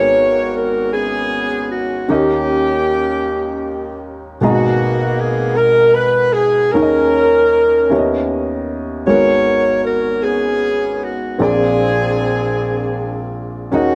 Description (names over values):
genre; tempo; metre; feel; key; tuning
slow gospel; 52 BPM (dotted quarters); 6/8; straight; G# minor; A4 = 439 Hz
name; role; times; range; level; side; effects
mellow saxophone section; melody; 0.0-13.9 s; A#3 to C#5; -17 LUFS; equal; none
warm upright piano; accompaniment; 0.0-13.9 s; G#1 to A#5; -21 LUFS; equal; none
room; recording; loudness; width
moderate plate reverb, RT60 3.0 s; none; -16 LUFS; mono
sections
0.0-13.9 A section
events
none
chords
0.0 G#m11; 2.1 D#7; 4.4 G#m9; 6.7 D#7sus4; 7.9 D#7b9b13; 9.1 G#m11; 11.4 A#9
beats
0.93 | 2.09 3.25 | 4.41 5.58 | 6.74 7.90 | 9.07 10.23 | 11.40 12.56 | 13.73